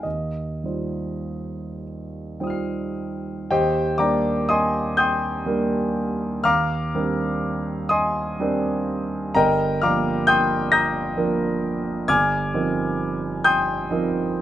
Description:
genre	classical, impressionist solo piano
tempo	33-45 BPM (dotted quarters)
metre	6/8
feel	rubato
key	Eb major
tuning	A4 = 442 Hz
part	clear concert grand piano	solo	0.0-14.4 s	G1 to C7	-20 LUFS	equal	none
room	light reverb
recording	none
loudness	-20 LUFS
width	side -12 dB against mid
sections	0.0-3.5 A section; 3.5-14.4 A section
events	none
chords	0.0 Eb69; 3.5 Ebmaj7; 6.4 Cm9/Eb; 9.4 Gm7; 12.1 Fm11/G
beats	| 0.05 1.83 | 3.51 4.98 | 6.45 7.89 | 9.35 10.72 | 12.09 13.43

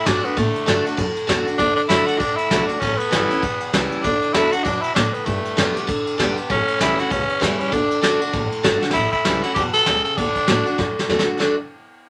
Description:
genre	rockabilly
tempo	196 BPM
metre	4/4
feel	swing 59% on 8ths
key	D major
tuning	A4 = 439 Hz
part	growling tenor saxophone	melody	0.0-11.6 s	A3 to A4	-24 LUFS	equal	none
part	picked steel-string acoustic guitar	accompaniment	0.0-11.5 s	E2 to G4	-24 LUFS	equal	none
part	upright bass	bass	0.1-11.6 s	G1 to A2	-30 LUFS	equal	none
part	soft brush drum kit	drums	0.1-11.5 s	crash cymbal, kick drum, ride cymbal, snare drum	-26 LUFS	equal	none
room	light reverb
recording	none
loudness	-20 LUFS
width	mono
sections	0.0-8.9 A section; 8.9-11.4 B section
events	drum fill 8.8, 10.8-11.4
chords	0.0 D; 2.8 A7; 4.0 D; 5.3 G; 6.5 A7; 7.7 D; 8.9 A7; 10.2 D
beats	0.06 | 0.36 0.67 0.98 1.28 | 1.59 1.90 2.20 2.51 | 2.82 3.12 3.43 3.74 | 4.04 4.35 4.66 4.96 | 5.27 5.58 5.88 6.19 | 6.50 6.80 7.11 7.42 | 7.72 8.03 8.33 8.64 | 8.95 9.25 9.56 9.87 | 10.17 10.48 10.79 11.09 | 11.40

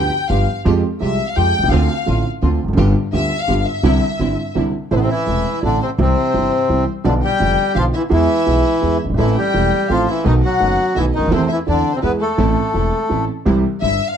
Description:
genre	tango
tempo	168 BPM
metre	3/4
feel	rubato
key	C major, A minor from 4.9 s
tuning	A4 = 440 Hz
part	warm studio violin section	second line	0.0-14.2 s	A4 to G5	-23 LUFS	left 5 dB	none
part	warm grand piano	accompaniment	0.0-14.0 s	E1 to A4	-20 LUFS	right 3 dB	none
part	clear symphonic string section	stabs	0.0-4.7, 9.2-14.0 s	G3 to G4	-29 LUFS	right 2 dB	none
part	upright bass	bass	0.0-14.0 s	E1 to F2	-19 LUFS	equal	none
part	bandoneon	melody	4.9-13.2 s	C3 to B4	-18 LUFS	left 1 dB	none
room	light reverb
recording	dark, warm production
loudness	-14 LUFS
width	side -8 dB against mid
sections	0.0-4.9 A section; 4.9-13.5 B section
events	violin section solo 0.0-4.9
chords	0.0 G7; 0.7 Fmadd9; 1.7 Dm7; 2.8 G7; 3.8 Cadd9; 4.9 Am; 6.0 C; 7.0 Bdim; 8.1 E; 9.2 Am; 10.3 B7; 11.3 Am/E; 12.0 E; 12.4 Am; 13.5 C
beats	0.29 | 0.65 1.01 1.36 | 1.72 2.07 2.42 | 2.77 3.13 3.48 | 3.83 4.19 4.55 | 4.91 5.27 5.63 | 5.98 6.34 6.69 | 7.05 7.40 7.75 | 8.11 8.47 8.82 | 9.18 9.54 9.90 | 10.25 10.61 10.96 | 11.31 11.67 12.03 | 12.38 12.74 13.10 | 13.46 13.82

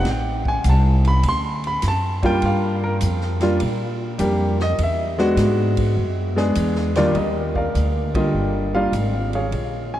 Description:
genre	jazz piano trio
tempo	101 BPM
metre	4/4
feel	swing 68% on 8ths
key	Eb major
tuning	A4 = 441 Hz
part	warm baby grand piano	melody	0.0-10.0 s	Eb2 to C6	-21 LUFS	equal	none
part	upright bass	bass	0.0-10.0 s	G1 to Bb2	-21 LUFS	equal	none
part	vintage drum kit	drums	0.0-9.7 s	hi-hat, kick drum, ride cymbal, snare drum	-32 LUFS	equal	none
room	wet cathedral reverb, RT60 6.6 s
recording	in a vast, echoing space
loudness	-18 LUFS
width	side -12 dB against mid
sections	0.0-7.2 A section; 7.2-10.0 B section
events	grand piano solo 0.0-7.2; band accent 8.0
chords	0.1 Am7; 1.2 D; 2.4 Gm7; 4.8 E9; 7.2 Ebmaj9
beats	| 0.06 0.65 1.24 1.83 | 2.42 3.01 3.61 4.20 | 4.79 5.38 5.97 6.56 | 7.15 7.74 8.34 8.93 | 9.52

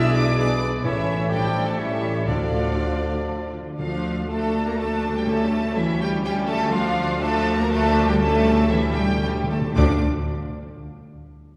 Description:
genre	classical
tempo	122 BPM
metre	3/4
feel	rubato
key	D minor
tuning	A4 = 445 Hz
part	rich studio violin section	melody	0.0-10.0 s	D5 to E6	-33 LUFS	equal	none
part	bright clarinet	second line	0.0-3.5 s	D4 to E5	-36 LUFS	equal	none
part	bright oboe	second line	0.0-3.5 s	C#5 to D5	-36 LUFS	equal	none
part	warm symphonic violin section	second line	0.0-10.0 s	E4 to F5	-33 LUFS	equal	none
part	mellow bassoon	accompaniment	0.0-3.5 s	E3 to G#3	-36 LUFS	equal	none
part	rich symphonic viola section	accompaniment	0.0-10.0 s	F3 to G#4	-34 LUFS	equal	none
part	dark trombone section	sustained chords	0.0-3.5 s	E3 to D4	-38 LUFS	equal	none
part	concert harp	arpeggios	0.0-10.0 s	A2 to F5	-37 LUFS	equal	none
part	warm trumpet section	stabs	0.0-3.5 s	G#4 to A4	-36 LUFS	equal	none
part	mellow tuba	bass	0.0-10.0 s	A1 to D2	-32 LUFS	equal	none
part	rich symphonic cello section	bass	0.0-10.0 s	A2 to D4	-30 LUFS	equal	none
part	warm symphonic double bass section	bass	0.0-10.0 s	A1 to D2	-28 LUFS	equal	none
part	mellow concert flute	second line	0.2-3.5 s	D5 to D6	-36 LUFS	equal	none
part	clear French horn section	sustained chords	0.2-10.0 s	D3 to D4	-30 LUFS	equal	none
part	timpani	percussion	0.8-6.0, 8.2-10.0 s	A2 to D3	-34 LUFS	equal	none
room	wet church reverb, RT60 2.6 s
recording	recorded in a church or concert hall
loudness	-22 LUFS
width	mono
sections	0.0-3.8 A section; 3.8-9.8 B section; 9.8-11.3 C section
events	slowing down 6.0-9.8; timpani fill 8.2-9.8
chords	0.0 E7/B; 0.9 A; 1.3 Dm/A; 1.8 A7; 2.3 Dm; 5.3 A7/D; 6.7 Dm; 8.2 A7/D; 9.8 Dm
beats	0.39 | 0.85 1.31 1.79 | 2.28 2.79 3.29 | 3.79 4.30 4.79 | 5.27 5.76 6.25 | 6.73 7.22 7.71 | 8.21 8.71 9.23 | 9.77

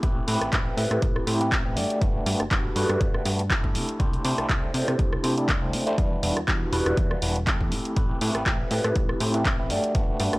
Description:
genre	filtered disco house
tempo	121 BPM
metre	4/4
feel	swing 55% on 16ths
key	unclear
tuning	A4 = 440 Hz
part	overdriven tine electric piano	accompaniment	0.0-10.4 s	G3 to D5	-27 LUFS	equal	medium tremolo, phaser, sidechain pumping
part	plucky analog bass	bass	0.0-10.4 s	E1 to C3	-29 LUFS	equal	transformer saturation, sidechain pumping
part	electronic kick drum	drums	0.0-10.1 s	none	-26 LUFS	equal	small room ambience
part	punchy analog drum machine	drums	0.0-10.4 s	handclaps, hi-hat, rim click	-29 LUFS	equal	sidechain pumping on hats, small room ambience, sidechain pumping on cymbals
room	little or no reverb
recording	dry, gritty hardware recording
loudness	-22 LUFS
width	side -21 dB against mid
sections	0.0-10.4 A section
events	none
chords	0.0 Am9; 1.8 Gmaj7; 3.8 C69; 6.0 Em7; 7.7 Am9; 9.7 Gmaj7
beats	| 0.03 0.53 1.02 1.52 | 2.02 2.51 3.01 3.50 | 4.00 4.50 4.99 5.49 | 5.98 6.48 6.97 7.47 | 7.97 8.46 8.96 9.45 | 9.95

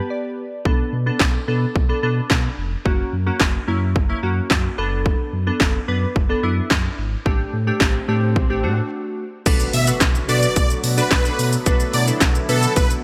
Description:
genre	dance-pop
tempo	109 BPM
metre	4/4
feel	straight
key	B minor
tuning	A4 = 440 Hz
part	glassy digital keys	accompaniment	0.0-13.0 s	A3 to D5	-27 LUFS	equal	chorus, sidechain pumping
part	sub bass with octave	bass	0.7-12.9 s	E#1 to B2	-24 LUFS	equal	sidechain pumping
part	house drum kit	drums	0.7-13.0 s	crash cymbal, handclaps, hi-hat, kick drum, shaker, snare drum	-22 LUFS	equal	overdrive
part	swell and impact	sound effects	7.7-11.7 s	none	-37 LUFS	equal	none
part	chorused pulse-width pad	sustained chords	9.5-13.0 s	D3 to F#4	-30 LUFS	equal	sidechain pumping
part	supersaw chords	melody	9.7-12.9 s	A4 to E5	-25 LUFS	equal	digital delay
room	light reverb, digital ambience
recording	bright 1980s-style digital production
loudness	-19 LUFS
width	mono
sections	0.0-9.5 A section; 9.5-13.0 B section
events	synth keys fill 0.0-0.7; break 0.1-0.7, 8.9-9.5; swell 7.7-9.5; drop 9.5-13.0; impact 9.5-11.7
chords	0.0 Gadd9; 0.7 Bm7; 2.9 F#; 4.8 Bm7/F#; 7.3 A7sus4; 9.5 Bm7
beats	0.10 | 0.65 1.21 1.75 2.31 | 2.86 3.41 3.96 4.51 | 5.06 5.61 6.16 6.71 | 7.26 7.81 8.36 8.91 | 9.46 10.01 10.56 11.11 | 11.66 12.21 12.76

